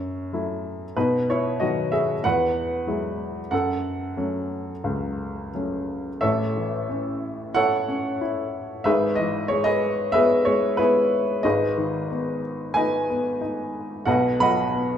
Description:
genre	classical, lyrical solo piano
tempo	92 BPM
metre	4/4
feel	rubato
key	unclear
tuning	A4 = 440 Hz
part	clear upright piano	solo	0.0-15.0 s	G#1 to B5	-21 LUFS	equal	none
room	moderate recital hall reverb, RT60 1.7 s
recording	minimal, uncompressed stereo recording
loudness	-21 LUFS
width	side -9 dB against mid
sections	0.0-6.2 A section; 6.2-15.0 B section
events	none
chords	0.0 F#m7; 1.0 B; 2.2 Eadd9; 3.5 F#m; 6.2 A; 8.9 E/G#; 11.4 G#m; 14.1 B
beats	0.31 | 0.95 1.60 2.24 2.88 | 3.52 4.18 4.85 5.54 | 6.22 6.89 7.55 8.21 | 8.86 9.51 10.15 10.79 | 11.44 12.11 12.76 13.41 | 14.06 14.74

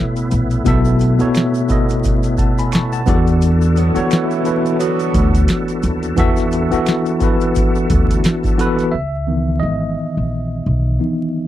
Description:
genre	R&B, neo-soul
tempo	87 BPM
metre	4/4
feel	swing 58% on 16ths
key	unclear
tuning	A4 = 442 Hz
part	tine electric piano	accompaniment	0.0-11.5 s	B2 to C#6	-17 LUFS	left 1 dB	overdrive, fast stereo tremolo
part	bright tonewheel organ	sustained chords	0.0-8.9 s	A3 to A4	-26 LUFS	right 1 dB	fast rotary speaker, chorus vibrato
part	booming analog drum machine	drums	0.2-8.9 s	hi-hat, kick drum, snare drum	-18 LUFS	equal	none
part	tube shaker and finger snaps	percussion	0.2-8.9 s	none	-36 LUFS	left 1 dB	none
part	upright bass	bass	0.3-11.0 s	G#1 to E2	-17 LUFS	equal	none
part	mellow horn section	stabs	3.8-5.4 s	B2 to F#4	-22 LUFS	right 14 dB	none
room	little or no reverb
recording	dry, close 1970s-style studio recording, vinyl crackle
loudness	-14 LUFS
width	side -13 dB against mid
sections	0.0-8.9 A section; 8.9-11.5 B section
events	tine electric piano solo 8.9-11.5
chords	0.0 B9sus4; 3.1 E9sus4; 8.9 C#m9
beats	| 0.66 1.35 2.04 2.73 | 3.42 4.11 4.79 5.48 | 6.17 6.86 7.55 8.24 | 8.93 9.62 10.31 11.00

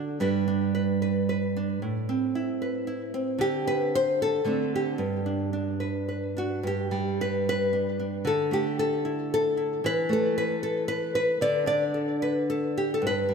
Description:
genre	folk, solo fingerstyle acoustic guitar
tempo	113 BPM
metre	3/4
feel	rubato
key	G major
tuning	A4 = 439 Hz
part	nylon-string guitar	solo	0.0-13.3 s	G2 to D5	-24 LUFS	right 1 dB	tape echo
room	moderate concert hall reverb, RT60 2.3 s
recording	none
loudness	-24 LUFS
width	side -5 dB against mid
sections	0.0-6.7 A section; 6.7-13.3 A section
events	none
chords	0.2 G; 1.8 Amadd9; 3.4 Am11/D; 4.4 D5; 5.0 G; 8.3 Dsus2; 9.8 A5/E; 11.4 D5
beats	| 0.21 0.75 1.29 | 1.82 2.34 2.86 | 3.39 3.92 4.45 | 4.98 5.53 6.09 | 6.65 7.20 7.73 | 8.26 8.79 9.31 | 9.84 10.36 10.88 | 11.41 11.94 12.48 | 13.03

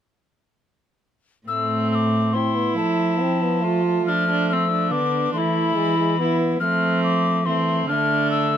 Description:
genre	classical, renaissance-style consort dance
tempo	140 BPM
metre	3/4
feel	straight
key	A minor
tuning	A4 = 440 Hz
part	mellow hollow soprano recorder	melody	1.5-8.6 s	A5 to F6	-24 LUFS	left 6 dB	none
part	warm viola	second line	1.5-8.6 s	C4 to F4	-24 LUFS	right 5 dB	none
part	warm trombone	accompaniment	1.5-8.6 s	G#3 to C4	-26 LUFS	left 2 dB	none
part	dark cello	bass	1.5-8.6 s	A2 to F3	-24 LUFS	right 1 dB	none
room	light reverb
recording	close, detailed microphones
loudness	-18 LUFS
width	side -9 dB against mid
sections	1.5-8.6 A section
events	none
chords	1.5 Am; 2.8 F; 4.1 Dm/F; 5.3 Esus4; 5.8 E; 6.6 F; 7.9 Dm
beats	| 1.48 1.91 2.34 | 2.77 3.20 3.63 | 4.05 4.48 4.91 | 5.34 5.76 6.19 | 6.62 7.04 7.46 | 7.89 8.32

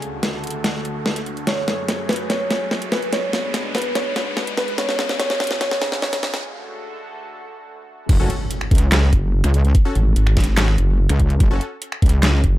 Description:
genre	heavy wobble dubstep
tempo	145 BPM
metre	4/4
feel	half-time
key	F# harmonic minor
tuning	A4 = 440 Hz
part	felt-muted upright piano	melody	0.0-6.4 s	B4 to G#5	-25 LUFS	equal	dub echo
part	lush unison pad	sustained chords	0.0-8.1 s	C#2 to C#5	-30 LUFS	equal	chorus, sidechain pumping
part	dubstep drum kit	drums	0.0-12.5 s	crash cymbal, finger snaps, handclaps, hi-hat, snare drum	-23 LUFS	equal	none
part	riser and impact	sound effects	0.0-9.7 s	none	-30 LUFS	equal	none
part	wobble bass	bass	8.1-12.4 s	F#1 to C#2	-16 LUFS	equal	chorus, overdrive
part	electronic kick drum	drums	8.1-12.5 s	none	-16 LUFS	equal	none
part	supersaw stab	stabs	8.2-11.6 s	C#4 to A4	-30 LUFS	left 2 dB	dub echo
part	vowel-sweep wobble bass	bass	9.1-12.6 s	F#1 to G#1	-16 LUFS	equal	chorus, overdrive
room	moderate digital room reverb, RT60 1.1 s, digital ambience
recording	dark, warm production, high-pass filter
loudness	-17 LUFS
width	side -15 dB against mid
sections	0.0-8.1 A section; 8.1-12.6 B section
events	build-up 0.0-8.1; drum fill 0.0-6.4; riser 0.0-6.4; filter sweep 0.0-8.1; break 6.4-8.1; drop 8.1-12.6; impact 8.1-9.7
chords	0.0 D; 1.5 F#madd9; 3.1 G#dim; 4.8 C#; 6.4 D; 8.1 F#m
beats	0.23 0.64 1.06 | 1.47 1.89 2.30 2.71 | 3.13 3.54 3.95 4.37 | 4.78 5.20 5.61 6.02 | 6.44 6.85 7.26 7.68 | 8.09 8.51 8.92 9.33 | 9.75 10.16 10.57 10.99 | 11.40 11.82 12.23

